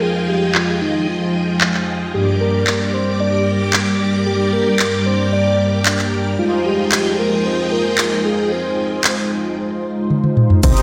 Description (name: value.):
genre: italo disco.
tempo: 113 BPM.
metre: 4/4.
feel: straight.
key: unclear.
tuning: A4 = 440 Hz.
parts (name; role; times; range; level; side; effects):
soft octave-layered synth lead; melody; 0.0-10.8 s; Eb4 to D5; -23 LUFS; equal; chorus, tape echo.
string machine, full ensemble; sustained chords; 0.0-10.8 s; F3 to D6; -22 LUFS; equal; ensemble chorus.
mellow synth brass; stabs; 0.0-10.8 s; G2 to Eb5; -24 LUFS; equal; chorus, tape echo.
house drum kit; drums; 0.5-10.8 s; cabasa, crash cymbal, handclaps, hi-hat, toms; -20 LUFS; equal; low-pass filter on cymbals, low-pass filter on snare, low-pass filter on toms, low-pass filter on hats, low-pass filter on perc.
round analog bass; bass; 10.6-10.7 s; C2; -17 LUFS; equal; none.
electronic kick drum; drums; 10.6-10.7 s; none; -16 LUFS; equal; none.
room: wet lush hall reverb, RT60 1.6 s, digital ambience.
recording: dreamy mix soaked in reverb.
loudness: -17 LUFS.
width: mono.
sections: 0.0-10.6 A section.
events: filter sweep on drum 0.0-10.6; filter sweep on analog polysynth 0.0-10.6; drum fill 10.1-10.6.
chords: 0.0 Fm7; 2.1 Gm; 6.4 Fm7.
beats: | 0.02 0.55 1.08 1.61 | 2.14 2.67 3.20 3.73 | 4.26 4.79 5.33 5.86 | 6.39 6.92 7.45 7.98 | 8.51 9.04 9.57 10.10 | 10.63.